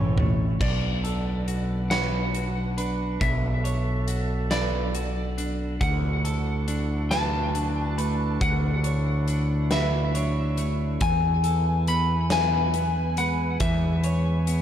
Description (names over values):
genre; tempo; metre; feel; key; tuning
post-rock; 46 BPM (dotted quarters); 6/8; straight; B minor; A4 = 440 Hz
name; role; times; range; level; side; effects
flute section; sustained chords; 0.0-14.6 s; D4 to G#5; -37 LUFS; right 3 dB; none
clean electric guitar; arpeggios; 0.0-14.6 s; A2 to C#5; -32 LUFS; left 1 dB; digital delay
electric guitar through a small old amp; arpeggios; 0.0-14.6 s; A4 to C#5; -36 LUFS; right 5 dB; digital delay
growling picked electric bass; bass; 0.0-14.6 s; A1 to E2; -25 LUFS; equal; overdrive
huge arena drum kit; drums; 0.2-14.6 s; crash cymbal, hi-hat, kick drum, snare drum, toms; -30 LUFS; equal; none
electric slide guitar; melody; 0.6-14.5 s; D5 to B5; -30 LUFS; left 2 dB; digital delay
room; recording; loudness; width
small room reverb; dark, warm production; -22 LUFS; side -10 dB against mid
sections
0.6-14.6 A section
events
drum fill 0.0-0.6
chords
0.0 A; 0.6 Bmadd9; 5.8 Dadd9; 11.0 E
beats
| 0.61 1.91 | 3.21 4.51 | 5.81 7.11 | 8.41 9.71 | 11.01 12.31 | 13.61